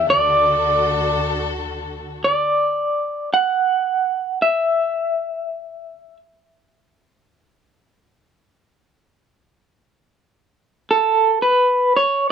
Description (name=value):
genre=folk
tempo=83 BPM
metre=3/4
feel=straight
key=D major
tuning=A4 = 442 Hz
part: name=electric guitar through a small old amp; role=melody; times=0.0-6.2, 10.9-12.3 s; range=A4 to F#5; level=-16 LUFS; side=right 1 dB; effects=tremolo
part: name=warm chamber string section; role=sustained chords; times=0.0-2.2 s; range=D2 to A4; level=-24 LUFS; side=left 2 dB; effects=none
room=little or no reverb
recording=close, detailed microphones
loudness=-16 LUFS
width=side -7 dB against mid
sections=0.0-2.2 A section; 2.2-10.9 B section; 10.9-12.3 C section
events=none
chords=0.1 D; 2.2 N.C.